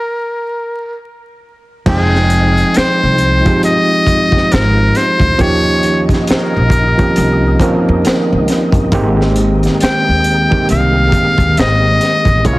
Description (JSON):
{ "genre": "R&B, neo-soul", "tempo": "68 BPM", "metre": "4/4", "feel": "swing 61% on 16ths", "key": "unclear", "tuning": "A4 = 442 Hz", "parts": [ { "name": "trumpet with metal mute", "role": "melody", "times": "0.0-12.6 s", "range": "Ab4 to G5", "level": "-15 LUFS", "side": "left 1 dB", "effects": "none" }, { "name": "overdriven reed electric piano", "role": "accompaniment", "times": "1.9-12.6 s", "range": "C3 to G5", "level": "-15 LUFS", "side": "right 1 dB", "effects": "none" }, { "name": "tonewheel organ", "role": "sustained chords", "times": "1.9-12.6 s", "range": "Eb3 to G5", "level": "-24 LUFS", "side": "left 1 dB", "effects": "slow rotary speaker, chorus vibrato" }, { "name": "upright bass", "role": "bass", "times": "1.9-12.6 s", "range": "F1 to F2", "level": "-15 LUFS", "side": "equal", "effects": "none" }, { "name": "crunchy breakbeat drum kit", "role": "drums", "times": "1.9-12.6 s", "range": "crash cymbal, finger snaps, hi-hat, kick drum, snare drum", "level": "-17 LUFS", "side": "equal", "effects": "none" } ], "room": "light reverb, small room ambience", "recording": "dense, heavily limited modern master, vinyl crackle", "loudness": "-10 LUFS", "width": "side -19 dB against mid", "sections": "0.0-1.9 A section; 1.9-12.6 B section", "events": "stop 0.0-1.9", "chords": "0.0 N.C.; 1.9 Fm9; 5.4 Eb13; 8.9 Abmaj9", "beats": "0.10 0.98 | 1.86 2.75 3.63 4.51 | 5.39 6.28 7.16 8.04 | 8.92 9.80 10.69 11.57 | 12.45" }